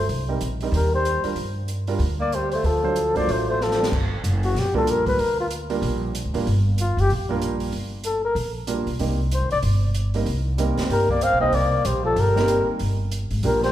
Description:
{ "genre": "jazz, small-group swing and bop", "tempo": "189 BPM", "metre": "4/4", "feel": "swing 61% on 8ths", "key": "G minor", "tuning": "A4 = 441 Hz", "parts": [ { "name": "mellow flugelhorn", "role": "melody", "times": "0.0-13.7 s", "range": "F4 to F5", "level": "-23 LUFS", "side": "left 3 dB", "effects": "none" }, { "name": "breathy tenor saxophone", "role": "second line", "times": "0.0-3.9, 10.9-13.7 s", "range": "F3 to C4", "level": "-28 LUFS", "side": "right 4 dB", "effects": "none" }, { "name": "upright bass", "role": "bass", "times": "0.0-13.7 s", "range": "F#1 to G2", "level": "-24 LUFS", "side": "equal", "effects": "none" }, { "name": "open jazz drum kit", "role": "drums", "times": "0.1-13.7 s", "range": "crash cymbal, hi-hat, kick drum, snare drum", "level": "-33 LUFS", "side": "equal", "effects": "none" }, { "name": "warm grand piano", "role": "accompaniment", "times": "0.3-13.7 s", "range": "F#3 to C5", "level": "-28 LUFS", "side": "right 4 dB", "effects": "none" } ], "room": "wet recital hall reverb, RT60 1.6 s", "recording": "recorded in a church or concert hall", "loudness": "-20 LUFS", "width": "side -12 dB against mid", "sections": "0.0-3.9 A section; 3.9-13.7 A section", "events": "drum fill 3.6-3.9", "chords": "0.1 Cm7; 1.4 G5; 2.6 D7#9; 3.9 Gm7; 9.0 Cm7; 12.8 Gm7", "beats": "| 0.09 0.41 0.73 1.05 | 1.37 1.69 2.00 2.32 | 2.64 2.96 3.28 3.60 | 3.91 4.23 4.55 4.87 | 5.19 5.50 5.82 6.14 | 6.46 6.78 7.09 7.41 | 7.73 8.04 8.36 8.68 | 9.00 9.31 9.63 9.95 | 10.27 10.58 10.90 11.22 | 11.53 11.85 12.17 12.48 | 12.80 13.12 13.44" }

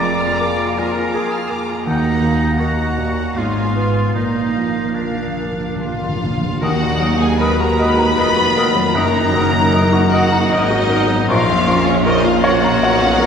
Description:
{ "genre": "classical, romantic movement for piano and orchestra", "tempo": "68-83 BPM", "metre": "3/4", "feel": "rubato", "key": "Eb minor", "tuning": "A4 = 441 Hz", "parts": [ { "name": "rich studio violin section", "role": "melody", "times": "0.0-13.3 s", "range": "Db5 to Cb6", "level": "-22 LUFS", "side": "left 2 dB", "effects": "none" }, { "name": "warm grand piano", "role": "melody", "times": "0.0-13.3 s", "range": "Bb1 to Bb5", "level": "-19 LUFS", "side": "left 1 dB", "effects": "none" }, { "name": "bright clarinet", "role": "second line", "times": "0.0-13.3 s", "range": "Db4 to D5", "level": "-25 LUFS", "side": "left 1 dB", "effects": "none" }, { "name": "clear oboe", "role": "second line", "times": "0.0-13.3 s", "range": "D4 to D5", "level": "-29 LUFS", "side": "right 1 dB", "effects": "none" }, { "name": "mellow hollow concert flute", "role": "second line", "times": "0.0-13.3 s", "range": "Bb4 to Eb6", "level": "-28 LUFS", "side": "equal", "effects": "none" }, { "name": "rich chamber violin section", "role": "second line", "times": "0.0-13.3 s", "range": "Db4 to F6", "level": "-26 LUFS", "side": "left 1 dB", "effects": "none" }, { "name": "rich chamber viola section", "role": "accompaniment", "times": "0.0-13.3 s", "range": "Ab3 to Gb4", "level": "-25 LUFS", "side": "right 2 dB", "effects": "none" }, { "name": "mellow French horn section", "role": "sustained chords", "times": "0.0-13.3 s", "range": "Bb3 to Ab4", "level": "-25 LUFS", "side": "left 3 dB", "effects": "none" }, { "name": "rich chamber cello section", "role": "bass", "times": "0.0-13.3 s", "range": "Eb2 to Cb3", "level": "-24 LUFS", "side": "right 2 dB", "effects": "none" }, { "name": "rich chamber double bass section", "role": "bass", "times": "0.0-13.3 s", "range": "F1 to Eb2", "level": "-25 LUFS", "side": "right 2 dB", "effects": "none" }, { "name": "timpani", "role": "percussion", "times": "1.9-6.5 s", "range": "Bb2 to Eb3", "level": "-27 LUFS", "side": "equal", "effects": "none" }, { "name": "mellow bassoon", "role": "accompaniment", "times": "6.6-13.3 s", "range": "Eb3 to F3", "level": "-27 LUFS", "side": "equal", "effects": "none" }, { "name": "warm tuba", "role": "bass", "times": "6.6-13.3 s", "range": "F1 to Eb2", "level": "-25 LUFS", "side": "right 2 dB", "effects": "none" } ], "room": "wet scoring stage reverb, RT60 2.1 s", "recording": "recorded in a church or concert hall", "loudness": "-14 LUFS", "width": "side -7 dB against mid", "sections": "0.0-6.6 A section; 6.6-13.3 B section", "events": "timpani fill 4.2-6.6", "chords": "0.0 Bb7/F; 1.9 Ebm; 3.4 Fdim/Ab; 4.2 Bb; 6.6 Ebm; 9.0 Ebm/Gb; 11.3 Bbm", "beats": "0.42 1.15 | 1.88 2.61 3.38 | 4.16 4.96 5.82 | 6.61 7.40 8.18 | 8.96 9.74 10.52 | 11.30 12.06 12.82" }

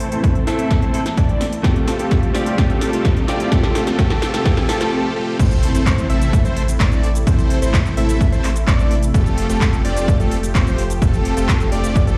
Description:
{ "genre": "EDM, festival progressive house", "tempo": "128 BPM", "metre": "4/4", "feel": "straight", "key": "A minor", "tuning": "A4 = 440 Hz", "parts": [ { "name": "direct-recorded clean electric guitar", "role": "accompaniment", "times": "0.0-4.9 s", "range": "A2 to A4", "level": "-27 LUFS", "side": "equal", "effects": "sidechain pumping, digital delay" }, { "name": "lush unison pad", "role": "sustained chords", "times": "0.1-12.2 s", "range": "C3 to A4", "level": "-31 LUFS", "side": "equal", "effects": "none" }, { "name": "unison lead", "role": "arpeggios", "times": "0.0-12.2 s", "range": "A4 to E5", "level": "-30 LUFS", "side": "equal", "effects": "sidechain pumping, digital delay" }, { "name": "dense compressed supersaw", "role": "riff", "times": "0.0-12.2 s", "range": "A3 to E5", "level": "-25 LUFS", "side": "equal", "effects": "vintage 12-bit sampler grit, sidechain pumping, low-pass filter, digital delay" }, { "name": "big-room dance drum kit", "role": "drums", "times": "0.0-12.2 s", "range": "crash cymbal, handclaps, hi-hat, shaker, snare drum", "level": "-29 LUFS", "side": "equal", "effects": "overdrive" }, { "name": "riser and impact", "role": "sound effects", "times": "1.2-7.3 s", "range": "none", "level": "-32 LUFS", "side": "equal", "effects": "none" }, { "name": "electronic kick drum", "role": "drums", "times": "0.2-12.1 s", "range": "none", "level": "-20 LUFS", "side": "equal", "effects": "overdrive" }, { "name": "saturated sub bass", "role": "bass", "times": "5.4-12.2 s", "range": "F1 to A1", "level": "-24 LUFS", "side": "equal", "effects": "sidechain pumping" } ], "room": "light reverb, digital ambience", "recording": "played on a big sound system in a bare room, large studio reverb", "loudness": "-17 LUFS", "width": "mono", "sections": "0.0-5.4 A section; 5.4-12.2 B section", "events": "build-up 0.0-5.4; drum fill 0.0-4.9; filter sweep on supersaw synth 0.0-5.4; filter sweep on analog synth lead 0.0-5.4; break 4.9-5.4; drop 5.4-12.2; impact 5.4-7.3", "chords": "0.0 Am; 1.6 Fadd9; 5.4 Am; 9.1 Fadd9", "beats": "0.24 0.71 1.18 | 1.64 2.11 2.58 3.05 | 3.52 3.99 4.46 4.92 | 5.39 5.86 6.33 6.80 | 7.27 7.74 8.21 8.68 | 9.14 9.61 10.08 10.55 | 11.02 11.49 11.96" }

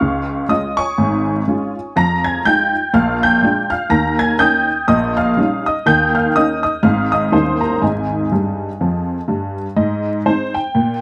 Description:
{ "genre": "jazz, stride piano", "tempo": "123 BPM", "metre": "4/4", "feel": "swing 58% on 8ths", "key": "Ab major", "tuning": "A4 = 440 Hz", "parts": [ { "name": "honky-tonk upright piano", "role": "solo", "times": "0.0-11.0 s", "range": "Ab1 to Bb6", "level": "-17 LUFS", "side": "equal", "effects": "none" } ], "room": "light reverb", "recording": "close, detailed microphones, vinyl crackle", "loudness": "-17 LUFS", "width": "mono", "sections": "0.0-9.8 A section; 9.8-11.0 B section", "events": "honky-tonk piano fill 8.3-9.8", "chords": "0.0 Db; 2.0 Fm7; 2.9 Bb7; 3.9 Eb7; 4.9 Eb7/Bb; 5.9 Eb7; 6.8 Ab; 7.3 Eb7b9; 7.8 Ab5; 9.8 Ab", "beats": "| 0.01 0.50 0.99 1.48 | 1.96 2.45 2.94 3.43 | 3.91 4.40 4.89 5.38 | 5.87 6.35 6.84 7.33 | 7.82 8.31 8.80 9.29 | 9.77 10.26 10.75" }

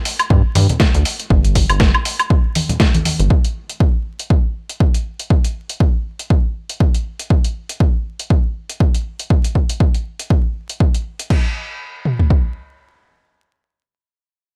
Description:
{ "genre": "deep house", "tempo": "120 BPM", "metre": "4/4", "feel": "swing 56% on 16ths", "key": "unclear", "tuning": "A4 = 442 Hz", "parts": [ { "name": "dusty soul sampler-style drum kit", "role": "drums", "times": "0.1-11.4 s", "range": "crash cymbal, hi-hat, snare drum, woodblock", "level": "-23 LUFS", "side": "equal", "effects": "overdrive, small room ambience" }, { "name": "rubbery square bass", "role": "bass", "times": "0.3-3.3 s", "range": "G1 to G2", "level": "-17 LUFS", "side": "equal", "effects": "sidechain pumping" }, { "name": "punchy analog drum machine", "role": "drums", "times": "0.3-12.4 s", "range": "kick drum, toms", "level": "-16 LUFS", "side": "equal", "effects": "small room ambience" }, { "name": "congas", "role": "percussion", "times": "0.6-3.2 s", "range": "none", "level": "-22 LUFS", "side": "equal", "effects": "none" } ], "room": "digital ambience", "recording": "vinyl crackle", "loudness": "-17 LUFS", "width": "mono", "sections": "0.0-11.3 A section; 11.3-14.6 B section", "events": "none", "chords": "none", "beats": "0.30 0.80 | 1.30 1.80 2.30 2.80 | 3.30 3.80 4.30 4.80 | 5.30 5.80 6.30 6.80 | 7.30 7.80 8.30 8.80 | 9.30 9.80 10.30 10.80 | 11.30 11.80 12.30" }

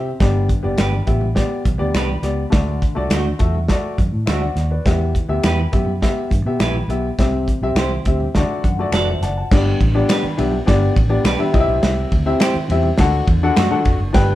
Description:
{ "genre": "uptempo 1960s-style soul", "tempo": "103 BPM", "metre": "4/4", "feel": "straight", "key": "G major", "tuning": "A4 = 439 Hz", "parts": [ { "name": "clear grand piano", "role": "accompaniment", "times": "0.0-14.3 s", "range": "G2 to A5", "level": "-21 LUFS", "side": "left 2 dB", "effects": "none" }, { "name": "vintage muted fingered electric bass", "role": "bass", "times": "0.0-14.3 s", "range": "F1 to C3", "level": "-20 LUFS", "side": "equal", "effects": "none" }, { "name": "warm soul drum kit", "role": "drums", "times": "0.2-14.3 s", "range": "crash cymbal, hi-hat, kick drum, ride cymbal, snare drum", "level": "-19 LUFS", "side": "equal", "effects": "none" }, { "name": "congas", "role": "percussion", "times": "0.2-13.8 s", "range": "none", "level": "-32 LUFS", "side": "right 2 dB", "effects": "none" }, { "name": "clean electric guitar", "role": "stabs", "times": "0.8-13.7 s", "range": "A3 to D5", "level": "-26 LUFS", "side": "right 3 dB", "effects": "spring reverb" }, { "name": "finger snaps", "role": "percussion", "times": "0.8-13.7 s", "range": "none", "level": "-30 LUFS", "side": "left 3 dB", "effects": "none" } ], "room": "light reverb", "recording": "band playing live in one room", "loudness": "-15 LUFS", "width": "side -14 dB against mid", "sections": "0.0-9.5 A section; 9.5-14.3 B section", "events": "grand piano fill 7.8-9.5", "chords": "0.2 G; 2.5 D; 4.9 Em; 7.2 C; 8.3 D; 9.5 G; 11.5 C; 13.0 D", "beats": "| 0.21 0.79 1.37 1.96 | 2.54 3.12 3.70 4.28 | 4.86 5.44 6.02 6.61 | 7.19 7.77 8.35 8.93 | 9.51 10.09 10.67 11.25 | 11.83 12.41 12.99 13.57 | 14.15" }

